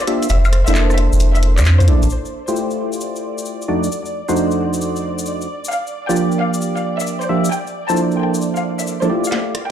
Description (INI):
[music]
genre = UK garage, two-step garage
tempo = 133 BPM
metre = 4/4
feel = swing 67% on 16ths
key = unclear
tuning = A4 = 440 Hz
[part]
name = warm studio violin section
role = melody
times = 0.0-2.0, 5.7-9.5 s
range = C5 to A5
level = -25 LUFS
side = left 2 dB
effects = digital delay
[part]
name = soft string machine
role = sustained chords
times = 0.0-9.7 s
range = C5 to D5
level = -30 LUFS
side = equal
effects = ensemble chorus
[part]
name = percussive organ stab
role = stabs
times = 0.0-9.5 s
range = F2 to E5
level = -19 LUFS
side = right 1 dB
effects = analog chorus, digital delay
[part]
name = garage drum kit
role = drums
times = 0.0-2.1, 9.3-9.7 s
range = handclaps, hi-hat, rim click, snare drum, woodblock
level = -24 LUFS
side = left 1 dB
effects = none
[part]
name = cabasa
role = percussion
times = 0.0-9.3 s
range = none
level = -30 LUFS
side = left 4 dB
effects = none
[part]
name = soft dub sub bass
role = bass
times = 0.3-2.1 s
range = F1 to F2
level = -12 LUFS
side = equal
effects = none
[sound]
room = light reverb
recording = played on a big sound system in a bare room, large studio reverb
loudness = -15 LUFS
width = side -10 dB against mid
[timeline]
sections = 0.0-2.1 A section; 2.1-9.3 B section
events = drum fill 9.3-9.7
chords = 0.3 C13/F; 2.1 Fmaj9; 3.7 D7b9/F; 5.7 Gm7/F; 7.5 C13/F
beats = | 0.30 0.75 1.20 1.65 | 2.10 2.56 3.01 3.46 | 3.91 4.36 4.81 5.26 | 5.71 6.17 6.62 7.07 | 7.52 7.97 8.42 8.87 | 9.32